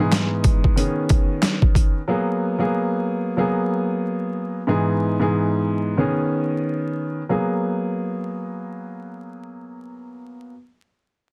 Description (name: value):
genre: hip hop, boom-bap hip-hop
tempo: 92 BPM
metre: 4/4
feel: swing 60% on 16ths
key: G# minor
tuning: A4 = 439 Hz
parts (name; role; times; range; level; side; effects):
- dark upright piano; accompaniment; 0.0-10.5 s; G#2 to G#4; -24 LUFS; equal; cassette tape
- boom bap sampler-style drum kit; drums; 0.1-1.9 s; handclaps, hi-hat, kick drum, snare drum; -20 LUFS; equal; overdrive
room: light reverb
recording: dense, heavily limited modern master, vinyl crackle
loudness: -22 LUFS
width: mono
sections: 0.0-7.3 A section; 7.3-9.9 B section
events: none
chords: 0.0 Emaj7/G#; 0.8 B69; 2.1 G#m9; 4.7 Emaj7/G#; 6.0 B69; 7.3 G#m9